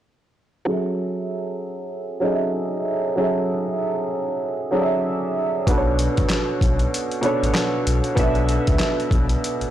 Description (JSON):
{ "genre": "hip hop, boom-bap hip-hop", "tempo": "96 BPM", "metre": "4/4", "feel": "swing 59% on 16ths", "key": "F# minor", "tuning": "A4 = 436 Hz", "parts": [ { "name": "warm upright piano", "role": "accompaniment", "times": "0.7-9.7 s", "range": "B2 to E5", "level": "-21 LUFS", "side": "right 1 dB", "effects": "high-pass filter, low-pass filter" }, { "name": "sub bass with octave", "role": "bass", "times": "5.7-9.7 s", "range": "A1 to D2", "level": "-23 LUFS", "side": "left 1 dB", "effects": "tube saturation" }, { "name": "dusty soul sampler-style drum kit", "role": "drums", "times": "5.7-9.7 s", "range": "handclaps, hi-hat, kick drum, snare drum", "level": "-22 LUFS", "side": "equal", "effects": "none" } ], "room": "moderate recital hall reverb, RT60 1.6 s", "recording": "blown-out, overdriven recording, overdrive", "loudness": "-19 LUFS", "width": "side -12 dB against mid", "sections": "0.7-9.7 A section", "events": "filter sweep on upright piano 0.7-9.7", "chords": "0.7 F#m7; 5.7 Bm7", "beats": "| 0.67 1.30 1.92 2.55 | 3.17 3.80 4.42 5.05 | 5.67 6.30 6.92 7.55 | 8.17 8.80 9.42" }